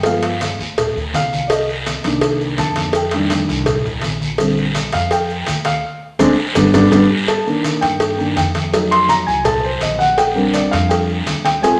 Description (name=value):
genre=Afro-Cuban jazz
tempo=166 BPM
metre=4/4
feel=straight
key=Bb major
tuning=A4 = 440 Hz
part: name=dark concert grand piano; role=accompaniment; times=0.0-11.8 s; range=D3 to C6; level=-19 LUFS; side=equal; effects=none
part: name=upright bass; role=bass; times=0.0-11.8 s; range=G1 to G2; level=-27 LUFS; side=equal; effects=none
part: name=cowbell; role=percussion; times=0.0-11.8 s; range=none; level=-23 LUFS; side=equal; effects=none
part: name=congas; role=percussion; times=0.1-11.8 s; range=none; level=-29 LUFS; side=equal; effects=none
part: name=guiro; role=percussion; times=0.1-11.8 s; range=none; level=-29 LUFS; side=equal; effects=none
part: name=maracas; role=percussion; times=0.1-11.8 s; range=none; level=-36 LUFS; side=equal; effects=none
room=wet large studio reverb, RT60 1.2 s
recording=none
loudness=-17 LUFS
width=mono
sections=0.0-7.3 A section; 7.3-11.8 A section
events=grand piano solo 0.0-11.8; band accent 5.8-7.3; drum fill 6.4-7.3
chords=0.1 G7b9; 1.5 Cm9; 2.9 F13; 4.4 Bb6; 5.8 Ab; 6.6 G; 7.3 Ebmaj9#11; 8.7 F7b9; 10.2 Bb69